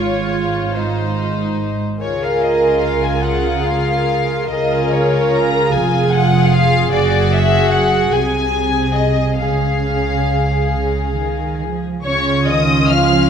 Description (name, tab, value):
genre	classical, slow romantic movement for string orchestra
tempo	44-51 BPM (dotted quarters)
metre	6/8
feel	rubato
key	Db major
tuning	A4 = 441 Hz
part	warm studio violin section	melody	0.0-13.3 s	Db5 to F6	-20 LUFS	left 5 dB	none
part	warm studio violin section	second line	0.0-13.3 s	Eb4 to F5	-20 LUFS	left 2 dB	none
part	warm studio viola section	accompaniment	0.0-13.3 s	Db4 to Bb4	-20 LUFS	right 3 dB	none
part	warm studio cello section	bass	0.0-13.3 s	F2 to F3	-21 LUFS	right 3 dB	none
part	warm studio double bass section	bass	0.0-13.3 s	F1 to Db2	-21 LUFS	right 3 dB	none
room	moderate scoring stage reverb, RT60 1.8 s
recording	none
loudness	-14 LUFS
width	side -7 dB against mid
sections	0.0-12.1 A section; 12.1-13.3 A section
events	none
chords	0.0 Db/Ab; 2.0 Db; 6.9 E9/F#; 8.1 Ab/C; 9.4 Db